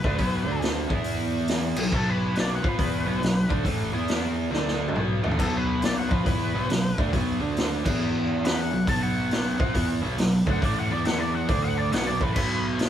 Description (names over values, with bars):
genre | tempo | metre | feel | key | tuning
blues rock power trio and southern rock | 138 BPM | 4/4 | swing 65% on 8ths | unclear | A4 = 441 Hz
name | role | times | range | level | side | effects
octave-fuzz lead guitar | melody | 0.0-12.6 s | A4 to A5 | -30 LUFS | left 1 dB | wah, distortion
biting overdriven guitar | riff | 0.0-12.9 s | A2 to E#4 | -26 LUFS | equal | none
fuzz picked electric bass | bass | 0.0-12.9 s | A1 to E#2 | -31 LUFS | equal | overdrive
raw garage drum kit | drums | 0.0-12.9 s | crash cymbal, hi-hat, kick drum, snare drum, splash cymbal, toms | -27 LUFS | equal | none
room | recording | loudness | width
moderate stone room reverb, RT60 1.1 s | band playing live in one room | -22 LUFS | side -10 dB against mid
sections
0.0-12.9 A section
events
lead electric guitar solo 0.0-12.9; drum fill 4.5-5.4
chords
0.4 D5; 0.8 E5; 1.7 B5; 3.9 E5; 4.5 D5; 5.0 B5; 7.3 D5; 7.8 E5; 8.7 B5; 10.8 E5; 11.5 D5; 11.9 B5